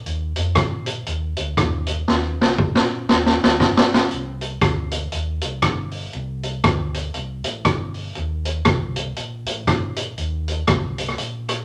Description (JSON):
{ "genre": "ska", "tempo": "119 BPM", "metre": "4/4", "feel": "swing 59% on 8ths", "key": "C dorian", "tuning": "A4 = 441 Hz", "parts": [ { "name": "fingered electric bass", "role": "bass", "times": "0.1-11.6 s", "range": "G1 to F2", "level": "-30 LUFS", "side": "equal", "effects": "none" }, { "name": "street-band drum kit", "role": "drums", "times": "0.1-11.6 s", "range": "hi-hat, kick drum, rim click, snare drum", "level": "-22 LUFS", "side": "equal", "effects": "none" } ], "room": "moderate studio reverb, RT60 0.6 s", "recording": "none", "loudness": "-22 LUFS", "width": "mono", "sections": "0.0-4.1 A section; 4.1-11.6 B section", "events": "drum fill 2.1-4.1", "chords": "none" }